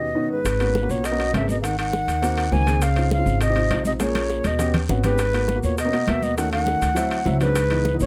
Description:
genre	Afro-Cuban jazz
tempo	203 BPM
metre	4/4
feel	straight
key	G# minor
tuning	A4 = 440 Hz
part	breathy bright concert flute	melody	0.0-8.1 s	B4 to G#5	-26 LUFS	equal	none
part	breathy trombone	second line	0.0-8.1 s	Ab2 to D#3	-31 LUFS	equal	none
part	warm upright piano	accompaniment	0.0-8.1 s	Eb3 to G#4	-29 LUFS	equal	none
part	upright bass	bass	0.0-8.1 s	G#1 to Eb2	-26 LUFS	equal	none
part	bongos	percussion	0.5-8.1 s	none	-35 LUFS	equal	none
part	congas	percussion	0.5-8.1 s	none	-31 LUFS	equal	none
part	guiro	percussion	0.5-8.1 s	none	-45 LUFS	equal	none
part	maracas	percussion	0.5-8.1 s	none	-42 LUFS	equal	none
part	timbales	percussion	0.5-7.9 s	none	-35 LUFS	equal	none
room	little or no reverb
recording	close, detailed microphones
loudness	-21 LUFS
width	mono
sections	0.5-8.1 A section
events	break 0.0-0.5; drum fill 4.0-5.2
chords	0.5 G#m11; 1.6 G#9; 2.8 C#maj9; 4.0 A#m7; 4.6 D#7alt; 5.2 G#m9; 6.4 D#m7b5; 7.0 D9; 7.6 C#m9

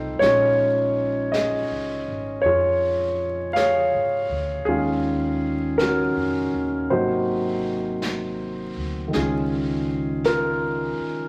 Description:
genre	jazz ballad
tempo	54 BPM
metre	4/4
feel	swing 66% on 8ths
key	unclear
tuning	A4 = 440 Hz
part	dark baby grand piano	accompaniment	0.0-11.3 s	C3 to F5	-23 LUFS	equal	none
part	upright bass	bass	0.0-11.0 s	Ab1 to Ab2	-35 LUFS	equal	none
part	jazz brush drum kit	drums	0.2-11.3 s	brushed snare drum, hi-hat, snare drum	-39 LUFS	equal	none
room	wet large studio reverb, RT60 1.2 s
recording	vinyl crackle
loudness	-23 LUFS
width	mono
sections	0.0-11.3 A section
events	none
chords	0.2 Bbm7; 4.7 Ebm9; 6.9 Ab9; 9.1 Db6

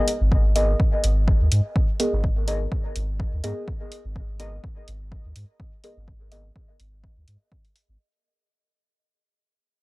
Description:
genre	dub techno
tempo	125 BPM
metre	4/4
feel	swing 54% on 16ths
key	G# minor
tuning	A4 = 435 Hz
part	deep mellow chord stab	stabs	0.0-6.5 s	B3 to D#5	-28 LUFS	equal	chorus, phaser, sidechain pumping, dub echo
part	electronic hi-hat	drums	0.1-7.9 s	none	-30 LUFS	right 1 dB	overdrive
part	soft dub sub bass	bass	0.2-8.0 s	G#1 to G#2	-23 LUFS	equal	transformer saturation, sidechain pumping
part	electronic kick drum	drums	0.3-7.6 s	none	-23 LUFS	equal	none
room	little or no reverb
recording	dry, gritty hardware recording, cassette tape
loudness	-20 LUFS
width	side -22 dB against mid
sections	0.0-8.0 A section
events	fade-out 0.0-8.0; filter sweep on synth stab 0.0-8.0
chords	0.0 G#madd9

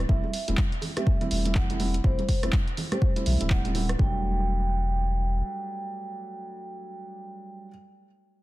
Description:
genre	deep house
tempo	123 BPM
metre	4/4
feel	swing 60% on 16ths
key	E minor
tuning	A4 = 442 Hz
part	warm sub bass	bass	0.0-5.4 s	D1 to B1	-27 LUFS	equal	sidechain pumping
part	vibraphone with soft mallets	melody	0.1-7.7 s	C5 to G5	-35 LUFS	right 1 dB	tape echo
part	felt-muted upright piano	stabs	0.1-7.7 s	F#3 to G4	-33 LUFS	right 3 dB	sidechain pumping, tape echo
part	electronic kick drum	drums	0.1-4.1 s	none	-24 LUFS	equal	none
part	congas and bongos	percussion	0.2-3.9 s	none	-36 LUFS	right 3 dB	none
part	punchy analog drum machine	drums	0.3-4.0 s	handclaps, hi-hat, rim click	-34 LUFS	equal	none
room	light reverb, small room ambience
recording	dense, heavily limited modern master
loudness	-24 LUFS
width	side -17 dB against mid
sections	0.0-4.0 A section; 4.0-7.9 B section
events	drop 0.0-4.0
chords	0.0 D9sus4; 4.0 Em11

